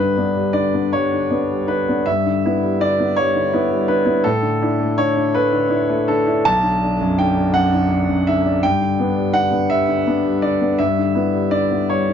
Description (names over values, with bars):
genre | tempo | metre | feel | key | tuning
neoclassical minimalist piano | 55 BPM (dotted quarters) | 6/8 | rubato | unclear | A4 = 438 Hz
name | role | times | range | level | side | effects
warm concert grand piano | solo | 0.0-12.1 s | B1 to A5 | -16 LUFS | equal | none
room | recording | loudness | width
light reverb | dark, warm production, nothing above 7.5 kHz | -16 LUFS | side -8 dB against mid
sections
0.0-12.1 A section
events
none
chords
0.0 G; 2.1 Em7/G; 4.2 Asus4; 6.5 Bm; 8.6 G; 10.8 Em7/G